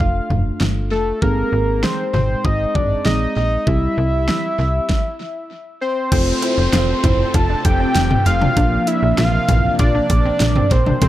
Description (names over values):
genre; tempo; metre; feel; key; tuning
synth-pop; 98 BPM; 4/4; straight; F major; A4 = 439 Hz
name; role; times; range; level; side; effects
fat analog lead; melody; 0.0-11.1 s; A4 to A5; -20 LUFS; equal; chorus, tape echo
muted felt-like synth keys; accompaniment; 0.0-11.1 s; E3 to D5; -25 LUFS; equal; chorus
slap-like FM bass; bass; 0.0-11.1 s; F1 to C2; -19 LUFS; equal; none
pop drum kit; drums; 0.0-11.1 s; crash cymbal, hi-hat, kick drum, snare drum, toms; -19 LUFS; equal; overdrive
string machine, violas; sustained chords; 6.1-11.1 s; C3 to A4; -26 LUFS; equal; phaser, ensemble chorus
wide unison pluck; arpeggios; 6.1-11.1 s; E3 to F4; -26 LUFS; left 1 dB; tape echo
downlifter; sound effects; 6.1-11.0 s; none; -31 LUFS; equal; none
room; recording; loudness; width
light reverb, digital ambience; echo-heavy mix; -15 LUFS; side -14 dB against mid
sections
0.0-6.1 A section; 6.1-11.1 B section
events
stop 4.9-6.1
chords
0.0 Dm/F; 1.2 Ab; 3.7 C; 6.1 F; 8.6 Bb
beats
0.00 0.61 | 1.22 1.83 2.45 3.06 | 3.67 4.28 4.89 5.51 | 6.12 6.73 7.34 7.96 | 8.57 9.18 9.79 10.40 | 11.02